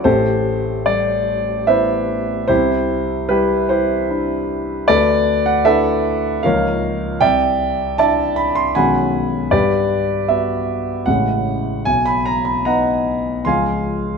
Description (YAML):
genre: classical, impressionist solo piano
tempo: 76 BPM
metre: 3/4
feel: rubato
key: unclear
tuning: A4 = 440 Hz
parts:
  - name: warm concert grand piano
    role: solo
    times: 0.0-14.2 s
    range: A1 to C6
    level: -15 LUFS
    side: equal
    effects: none
room: moderate recital hall reverb, RT60 1.8 s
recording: close, detailed microphones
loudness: -15 LUFS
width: side -5 dB against mid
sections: 0.0-14.2 A section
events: none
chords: 0.1 Am9; 2.5 Cadd9; 4.9 Dsus2; 6.4 C#69; 7.2 Cadd9; 8.8 B69; 9.5 Gmaj7; 11.1 Amaj7; 11.9 Bmaj7; 13.5 C#maj7